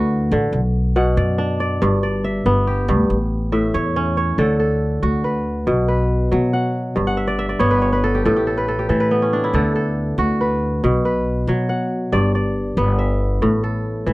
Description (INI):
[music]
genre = west african traditional, West African string and xylophone music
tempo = 93 BPM (dotted quarters)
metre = 12/8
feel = straight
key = D major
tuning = A4 = 439 Hz
[part]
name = kora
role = arpeggios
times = 0.0-14.1 s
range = G2 to F#5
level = -19 LUFS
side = equal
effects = none
[part]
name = upright bass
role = bass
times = 0.0-14.1 s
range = G1 to B2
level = -20 LUFS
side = equal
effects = none
[sound]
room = little or no reverb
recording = dry, close 1970s-style studio recording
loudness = -16 LUFS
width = side -19 dB against mid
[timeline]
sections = 0.0-4.4 A section; 4.4-14.1 B section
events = kora fill 7.1-9.5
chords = 0.0 D; 0.5 Bm; 1.8 G; 3.1 A; 4.4 D; 5.7 B5; 7.0 G; 8.2 A5; 9.5 D; 10.8 B5; 12.1 G; 13.4 A5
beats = 0.54 1.18 | 1.82 2.46 3.10 3.74 | 4.38 5.03 5.67 6.31 | 6.96 7.60 8.25 8.90 | 9.54 10.19 10.84 11.48 | 12.13 12.78 13.42 14.07